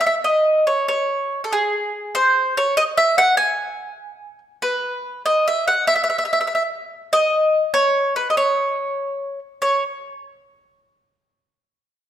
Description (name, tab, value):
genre	italian folk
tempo	96 BPM (dotted quarters)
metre	6/8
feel	straight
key	C# minor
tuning	A4 = 440 Hz
part	mandolin	solo	0.0-9.8 s	G#4 to G#5	-17 LUFS	equal	none
room	moderate recital hall reverb, RT60 1.5 s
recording	none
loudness	-17 LUFS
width	side -10 dB against mid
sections	0.0-9.6 A section; 9.6-10.9 B section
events	none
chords	none